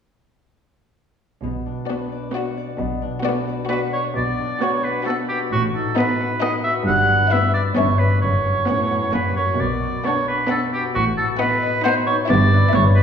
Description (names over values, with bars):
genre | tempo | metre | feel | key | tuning
cinematic, playful, whimsical film cue | 133 BPM | 3/4 | straight | B minor | A4 = 440 Hz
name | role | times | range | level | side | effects
concert harp | arpeggios | 1.4-13.0 s | F#2 to F#5 | -24 LUFS | left 4 dB | none
rich chamber cello section | bass | 1.4-13.0 s | F#2 to B2 | -25 LUFS | right 2 dB | none
rich symphonic double bass section | bass | 1.4-13.0 s | F#1 to B1 | -25 LUFS | right 2 dB | none
warm chamber violin section | melody | 1.9-13.0 s | D5 to F#5 | -30 LUFS | left 6 dB | none
rich chamber violin section | second line | 1.9-13.0 s | C#4 to F#4 | -30 LUFS | left 4 dB | none
rich chamber viola section | accompaniment | 1.9-13.0 s | A#3 to B3 | -26 LUFS | right 1 dB | none
clear oboe | second line | 3.7-13.0 s | F#4 to F#5 | -20 LUFS | right 2 dB | none
room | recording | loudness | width
wet recital hall reverb, RT60 1.7 s | recorded in a church or concert hall | -18 LUFS | side -7 dB against mid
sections
1.4-4.2 A section; 4.2-13.0 B section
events
none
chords
1.4 Bm; 5.5 B7/A; 6.9 Em/G; 8.2 F#sus4; 9.1 F#; 9.6 Bm; 11.0 B7/A; 12.3 Em/G